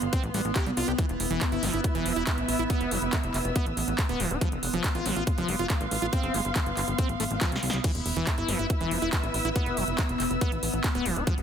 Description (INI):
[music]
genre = psychedelic trance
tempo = 140 BPM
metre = 4/4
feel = straight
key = E phrygian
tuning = A4 = 439 Hz
[part]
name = evolving wavetable pad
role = sustained chords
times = 0.0-11.4 s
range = B3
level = -33 LUFS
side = left 1 dB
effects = chorus, built-in reverb, phaser, sidechain pumping
[part]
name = plucky analog bass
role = bass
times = 0.0-11.4 s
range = D1 to C2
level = -32 LUFS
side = equal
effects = none
[part]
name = big-room dance drum kit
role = drums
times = 0.0-11.4 s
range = crash cymbal, handclaps, hi-hat, snare drum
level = -32 LUFS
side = right 1 dB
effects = none
[part]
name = muted studio string section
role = texture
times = 0.0-11.4 s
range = E4 to E6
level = -35 LUFS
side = right 1 dB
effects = sidechain pumping
[part]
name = liquid acid bass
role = riff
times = 0.1-11.3 s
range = D3 to G4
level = -32 LUFS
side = moving between left 3 dB and right 4 dB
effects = chorus, auto-pan, sidechain pumping, digital delay
[part]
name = electronic kick drum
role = drums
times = 0.1-11.4 s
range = none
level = -27 LUFS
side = equal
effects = overdrive
[sound]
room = light reverb, digital ambience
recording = dense, heavily limited modern master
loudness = -25 LUFS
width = side -8 dB against mid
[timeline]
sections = 0.0-11.4 A section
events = drum fill 7.4-7.8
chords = 0.0 F5; 1.0 E5; 4.4 F5; 7.8 E5